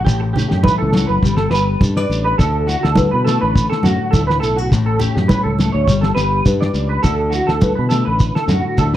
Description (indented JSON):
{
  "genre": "highlife guitar band",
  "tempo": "103 BPM",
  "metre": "4/4",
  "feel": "swing 54% on 16ths",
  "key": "D major",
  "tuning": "A4 = 441 Hz",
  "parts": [
    { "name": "nylon-string guitar", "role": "accompaniment", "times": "0.0-9.0 s", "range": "A2 to C#5", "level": "-22 LUFS", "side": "left 6 dB", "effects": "none" },
    { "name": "clean electric guitar", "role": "arpeggios", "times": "0.0-9.0 s", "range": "F#4 to D5", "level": "-19 LUFS", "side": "right 2 dB", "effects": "ensemble chorus, slapback echo" },
    { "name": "fingered electric bass", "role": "bass", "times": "0.0-9.0 s", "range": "F#1 to B2", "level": "-19 LUFS", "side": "equal", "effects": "none" },
    { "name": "damped 70s drum kit", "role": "drums", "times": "0.1-9.0 s", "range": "kick drum, snare drum", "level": "-17 LUFS", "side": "equal", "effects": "none" },
    { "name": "congas", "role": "percussion", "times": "0.1-8.9 s", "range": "none", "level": "-21 LUFS", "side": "right 2 dB", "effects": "none" },
    { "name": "shekere", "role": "percussion", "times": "0.1-8.9 s", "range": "none", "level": "-23 LUFS", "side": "right 1 dB", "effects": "none" }
  ],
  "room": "studio reverb",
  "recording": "dry, close 1970s-style studio recording",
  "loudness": "-13 LUFS",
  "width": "side -12 dB against mid",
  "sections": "0.0-9.0 A section",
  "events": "none",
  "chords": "0.1 A7; 1.2 G; 2.4 Dadd9; 4.7 A7; 5.9 G; 7.0 Dadd9",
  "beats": "| 0.06 0.64 1.23 1.81 | 2.39 2.97 3.55 4.13 | 4.72 5.30 5.88 6.46 | 7.04 7.62 8.21 8.79"
}